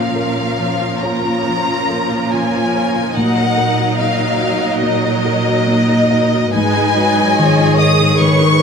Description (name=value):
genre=cinematic, emotional film score for orchestra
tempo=66-74 BPM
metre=4/4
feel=rubato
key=Eb minor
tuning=A4 = 440 Hz
part: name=warm studio violin section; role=melody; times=0.0-8.6 s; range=Eb5 to Eb6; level=-18 LUFS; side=left 3 dB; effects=none
part: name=warm studio violin section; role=second line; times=0.0-8.6 s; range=F4 to Eb5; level=-21 LUFS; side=left 2 dB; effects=none
part: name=felt-muted upright piano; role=accompaniment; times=0.0-8.6 s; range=Ab2 to Eb5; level=-18 LUFS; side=left 2 dB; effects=none
part: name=rich studio viola section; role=accompaniment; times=0.0-8.6 s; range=Eb3 to Ab4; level=-20 LUFS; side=right 3 dB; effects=none
part: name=rich studio cello section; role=bass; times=0.0-8.6 s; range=Ab2 to Bb2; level=-20 LUFS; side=right 4 dB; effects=none
room=wet scoring stage reverb, RT60 1.7 s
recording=none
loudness=-12 LUFS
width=side -6 dB against mid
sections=0.0-8.6 A section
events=none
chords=0.0 Bbm; 3.2 Ebm/Bb; 6.5 Abm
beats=0.58 1.46 2.32 | 3.16 3.98 4.81 5.65 | 6.53 7.36 8.18